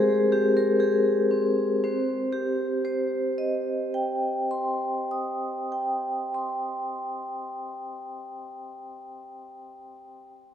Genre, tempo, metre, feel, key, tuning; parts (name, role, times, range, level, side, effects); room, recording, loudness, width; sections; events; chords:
classical, contemporary piece for solo vibraphone; 58 BPM; 3/4; rubato; C minor; A4 = 440 Hz
vibraphone with medium hard mallets; solo; 0.0-10.3 s; Ab3 to Eb6; -25 LUFS; equal
wet church reverb, RT60 2.8 s; dark, warm production; -24 LUFS; side -9 dB against mid
0.0-1.8 A section; 1.8-8.1 B section
slowing down 0.0-1.8
0.0 Abmaj7; 1.8 Cm